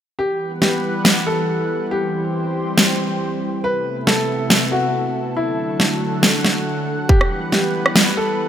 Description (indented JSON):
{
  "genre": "heavy wobble dubstep",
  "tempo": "139 BPM",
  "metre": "4/4",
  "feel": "swing 54% on 16ths, half-time",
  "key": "E minor",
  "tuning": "A4 = 440 Hz",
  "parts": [
    { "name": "warm baby grand piano", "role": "melody", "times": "0.2-8.5 s", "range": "E4 to B4", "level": "-23 LUFS", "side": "left 1 dB", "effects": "digital delay" },
    { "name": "lush unison pad", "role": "sustained chords", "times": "0.2-8.5 s", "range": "C3 to F#5", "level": "-22 LUFS", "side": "equal", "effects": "chorus, vintage 12-bit sampler grit, sidechain pumping" },
    { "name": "electronic snare drum and rim click", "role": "drums", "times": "0.6-8.0 s", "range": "none", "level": "-16 LUFS", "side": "equal", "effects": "none" },
    { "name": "electronic kick drum", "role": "drums", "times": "7.1-7.2 s", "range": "none", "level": "-14 LUFS", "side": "equal", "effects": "none" }
  ],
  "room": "light reverb",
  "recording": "none",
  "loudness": "-16 LUFS",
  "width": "side -10 dB against mid",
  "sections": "0.2-8.5 A section",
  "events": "none",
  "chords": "0.2 Emadd9; 1.9 C; 3.6 Amadd9; 5.4 D; 7.1 Emadd9"
}